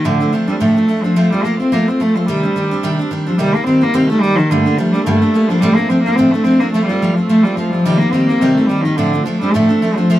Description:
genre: celtic folk, Celtic reel.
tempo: 215 BPM.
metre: 4/4.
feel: swing 55% on 8ths.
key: C dorian.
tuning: A4 = 440 Hz.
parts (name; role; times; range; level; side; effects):
dark cello; melody; 0.0-10.2 s; D3 to C4; -14 LUFS; equal; none.
picked steel-string acoustic guitar; accompaniment; 0.0-10.2 s; D2 to F4; -16 LUFS; right 1 dB; none.
room: wet booth ambience, RT60 0.2 s.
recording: none.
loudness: -12 LUFS.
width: side -14 dB against mid.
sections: 0.0-3.4 A section; 3.4-10.2 A section.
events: none.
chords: 0.0 Dm7; 1.2 F; 2.3 Cmadd9; 3.4 Cm7; 4.5 Gmadd9; 5.6 Dm7; 6.7 F; 7.9 Cm7; 9.0 Dm7.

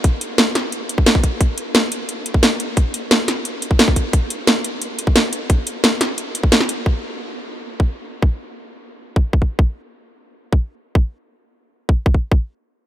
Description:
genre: drum and bass.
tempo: 176 BPM.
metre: 4/4.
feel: straight.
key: none.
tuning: none.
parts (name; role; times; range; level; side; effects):
drum and bass drum kit; drums; 0.0-6.8 s; hi-hat, snare drum; -17 LUFS; equal; none.
electronic kick drum; drums; 0.0-12.4 s; none; -15 LUFS; equal; none.
room: light reverb.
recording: none.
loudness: -16 LUFS.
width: side -12 dB against mid.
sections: 0.0-6.9 A section; 6.9-12.9 B section.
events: kick drops out 6.5-6.9.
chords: none.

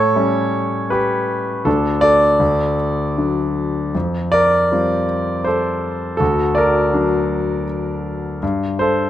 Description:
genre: classical, lyrical solo piano.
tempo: 80 BPM.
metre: 3/4.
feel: rubato.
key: unclear.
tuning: A4 = 438 Hz.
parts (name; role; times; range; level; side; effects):
clear concert grand piano; solo; 0.0-9.1 s; D2 to D5; -15 LUFS; equal; none.
room: light reverb.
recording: close, detailed microphones.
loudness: -16 LUFS.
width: side -12 dB against mid.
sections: 0.0-9.1 A section.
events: none.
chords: 0.0 A7; 1.7 D5; 2.4 D; 3.9 Fadd9; 6.2 D; 8.4 N.C..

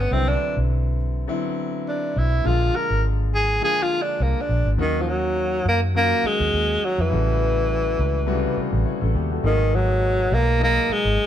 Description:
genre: lush 1970s-style soul.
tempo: 103 BPM.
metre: 4/4.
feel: swing 54% on 16ths.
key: Eb minor from 4.8 s.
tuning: A4 = 440 Hz.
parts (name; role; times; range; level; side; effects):
breathy tenor saxophone; melody; 0.0-11.3 s; Eb3 to Bb4; -21 LUFS; equal; none.
clear grand piano; accompaniment; 0.0-11.3 s; Bb2 to C#5; -28 LUFS; left 4 dB; none.
vintage muted fingered electric bass; bass; 0.0-11.2 s; Ab1 to Gb2; -22 LUFS; equal; none.
room: light reverb.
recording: band playing live in one room.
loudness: -19 LUFS.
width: side -10 dB against mid.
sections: 0.0-4.8 A section; 4.8-11.3 B section.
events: tenor saxophone solo 0.0-4.8.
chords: 0.1 Cmaj9#11; 2.5 Bb7; 4.8 Ebm7; 7.1 A13; 9.4 Abm9.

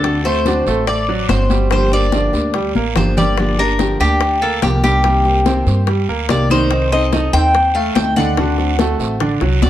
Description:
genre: latin, Cuban son and guajira.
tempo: 144 BPM.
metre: 4/4.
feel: straight.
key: G minor.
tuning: A4 = 440 Hz.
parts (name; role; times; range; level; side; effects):
Cuban tres; melody; 0.0-9.7 s; G4 to G5; -18 LUFS; left 2 dB; none.
nylon-string guitar; accompaniment; 0.0-9.7 s; C3 to A4; -22 LUFS; left 2 dB; none.
bright grand piano; arpeggios; 0.0-9.7 s; D3 to G5; -21 LUFS; right 2 dB; none.
upright bass; bass; 0.0-9.7 s; G1 to G2; -18 LUFS; equal; none.
bongos; percussion; 0.0-9.7 s; none; -24 LUFS; left 8 dB; none.
congas; percussion; 0.0-9.7 s; none; -21 LUFS; left 2 dB; none.
guiro; percussion; 0.0-9.7 s; none; -30 LUFS; right 7 dB; none.
room: light reverb.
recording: dark, warm production.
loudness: -13 LUFS.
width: side -12 dB against mid.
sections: 0.0-3.4 A section; 3.4-9.7 A section.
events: drum fill 2.8-3.4, 9.4.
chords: 0.0 D7; 1.7 Gm7; 5.0 Cm7; 6.7 Adim/C; 8.4 D7.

